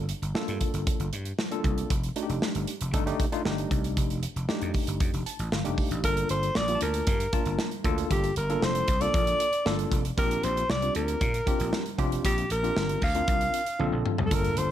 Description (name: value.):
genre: early-eighties boogie funk.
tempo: 116 BPM.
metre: 4/4.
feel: straight.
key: G minor.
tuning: A4 = 437 Hz.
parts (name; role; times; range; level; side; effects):
tine electric piano; accompaniment; 0.0-14.7 s; Ab3 to A5; -32 LUFS; left 1 dB; overdrive, fast stereo tremolo.
vintage slap bass; bass; 0.0-14.7 s; F1 to Bb2; -30 LUFS; equal; none.
modern studio drum kit; drums; 0.1-14.7 s; hi-hat, kick drum, snare drum, toms; -29 LUFS; equal; none.
breathy alto saxophone; melody; 6.0-14.7 s; G4 to F5; -28 LUFS; equal; slapback echo.
room: small room ambience.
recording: none.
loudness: -25 LUFS.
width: side -11 dB against mid.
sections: 0.0-6.0 A section; 6.0-14.7 B section.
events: tine electric piano fill 5.0-6.0; drum fill 13.8-14.3.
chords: 0.0 Gm9; 1.9 F13; 6.0 Gm9.